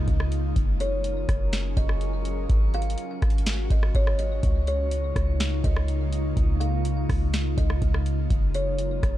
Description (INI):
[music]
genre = hip hop, atmospheric cloud-rap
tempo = 124 BPM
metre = 4/4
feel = half-time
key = Db major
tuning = A4 = 440 Hz
[part]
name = kalimba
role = melody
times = 0.0-9.2 s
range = Db5 to F5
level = -33 LUFS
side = equal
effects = low-pass filter, digital delay
[part]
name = glassy FM pad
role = sustained chords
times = 0.0-9.2 s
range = Db3 to Bb4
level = -31 LUFS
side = left 1 dB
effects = ensemble chorus, built-in reverb, sidechain pumping
[part]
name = warm 808-style bass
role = bass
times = 0.0-9.2 s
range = Gb1 to Db2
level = -25 LUFS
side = equal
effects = none
[part]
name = booming analog drum machine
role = drums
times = 0.1-9.2 s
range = hi-hat, kick drum, rim click, snare drum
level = -26 LUFS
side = equal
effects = vintage 12-bit sampler grit
[sound]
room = little or no reverb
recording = dark, warm production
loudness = -22 LUFS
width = side -14 dB against mid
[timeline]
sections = 0.0-9.2 A section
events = none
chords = 0.0 Db6; 0.6 Gbmaj9; 2.5 Ab7sus4; 4.4 Db6; 8.3 Gbmaj9